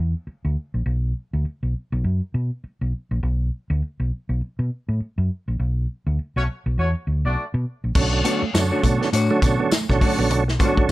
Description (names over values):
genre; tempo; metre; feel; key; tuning
funk; 102 BPM; 4/4; swing 60% on 16ths; B minor; A4 = 440 Hz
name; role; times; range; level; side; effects
hollow-body short-scale fingered electric bass; bass; 0.0-10.9 s; A#1 to B2; -22 LUFS; equal; none
dark horn section; second line; 6.4-7.4 s; A3 to D5; -27 LUFS; left 1 dB; none
tonewheel organ; stabs; 8.0-10.9 s; C#3 to C#4; -22 LUFS; right 4 dB; chorus vibrato
warm soul drum kit; drums; 8.0-10.9 s; crash cymbal, hi-hat, kick drum, snare drum; -21 LUFS; equal; none
tambourine; percussion; 8.0-10.9 s; none; -34 LUFS; left 3 dB; none
mellow electric guitar; riff; 8.1-10.9 s; A3 to B3; -28 LUFS; right 6 dB; none
mellow electric guitar; accompaniment; 8.2-10.9 s; A3 to C#5; -24 LUFS; left 5 dB; none
room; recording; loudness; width
little or no reverb; none; -20 LUFS; side -17 dB against mid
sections
0.0-8.0 A section; 8.0-10.9 B section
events
band accent 5.6-8.0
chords
0.0 N.C.; 8.0 Bm9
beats
0.27 | 0.86 1.45 2.04 2.64 | 3.23 3.82 4.41 5.00 | 5.59 6.18 6.77 7.36 | 7.95 8.54 9.13 9.72 | 10.30 10.89